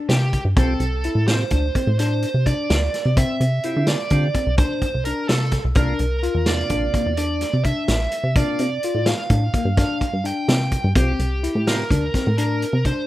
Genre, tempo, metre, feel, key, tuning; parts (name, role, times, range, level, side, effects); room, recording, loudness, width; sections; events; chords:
progressive instrumental, band music in an uneven meter; 254 BPM (eighths); 11/8; straight; A4 = 440 Hz
tine electric piano; arpeggios; 0.0-13.1 s; Bb3 to F4; -27 LUFS; left 4 dB
smooth overdriven lead guitar; melody; 0.1-13.1 s; G4 to G5; -26 LUFS; right 3 dB
plucky analog bass; bass; 0.1-12.9 s; Bb1 to D3; -20 LUFS; equal
vintage drum kit; drums; 0.1-13.0 s; hi-hat, kick drum, snare drum; -22 LUFS; equal
percussive tonewheel organ; accompaniment; 0.6-11.8 s; C3 to G4; -30 LUFS; right 3 dB; slow rotary speaker
studio ambience; rough home demo mix; -18 LUFS; side -15 dB against mid
0.0-13.1 A section
0.0 Csus2; 0.6 Fsus2/C; 5.8 C9sus4; 11.0 Fsus2/C